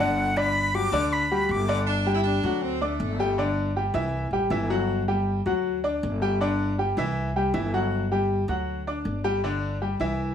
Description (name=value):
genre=latin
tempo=159 BPM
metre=4/4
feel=straight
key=G major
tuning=A4 = 439 Hz
part: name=breathy bright jazz flute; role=melody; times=0.0-1.8 s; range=F#5 to D6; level=-25 LUFS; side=left 1 dB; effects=none
part: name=bright grand piano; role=accompaniment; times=0.0-10.3 s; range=D3 to D6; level=-25 LUFS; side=left 1 dB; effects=none
part: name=upright bass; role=bass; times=0.0-10.3 s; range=G1 to D2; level=-28 LUFS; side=equal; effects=none
part: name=clear saxophone section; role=second line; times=1.9-3.6 s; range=A3 to E4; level=-29 LUFS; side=equal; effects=none
room=light reverb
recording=studio reverb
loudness=-23 LUFS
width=side -8 dB against mid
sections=0.0-1.9 A section; 1.9-10.3 B section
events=flute solo 0.0-1.9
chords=0.4 G5; 4.1 C; 4.9 G5; 7.2 C; 7.9 G5